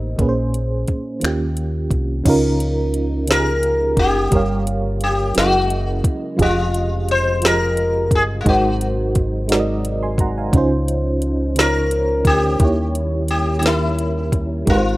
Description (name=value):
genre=slow six-eight R&B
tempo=58 BPM (dotted quarters)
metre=6/8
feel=straight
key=unclear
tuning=A4 = 441 Hz
part: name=sitar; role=melody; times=0.0-15.0 s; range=Eb4 to C5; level=-20 LUFS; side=left 2 dB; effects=slapback echo
part: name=FM electric piano with tremolo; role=accompaniment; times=0.0-15.0 s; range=Bb2 to C6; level=-21 LUFS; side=right 2 dB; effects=none
part: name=deep dub fingered electric bass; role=bass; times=0.0-15.0 s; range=F1 to Eb2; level=-22 LUFS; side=equal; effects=none
part: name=smooth R&B drum kit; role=drums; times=0.2-14.8 s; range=crash cymbal, finger snaps, hi-hat, kick drum, snare drum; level=-19 LUFS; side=equal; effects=none
part: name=tonewheel organ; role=sustained chords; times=2.2-15.0 s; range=C3 to G4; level=-31 LUFS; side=equal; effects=none
room=little or no reverb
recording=rough home demo mix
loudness=-16 LUFS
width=side -18 dB against mid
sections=0.0-2.3 A section; 2.3-15.0 B section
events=none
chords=0.2 Bbm7; 1.2 Eb9; 2.3 Db69; 4.3 Gm7b5; 5.4 Gb13; 6.4 Fm9; 8.5 Ab7; 10.5 Dbmaj9; 12.6 Eb7b9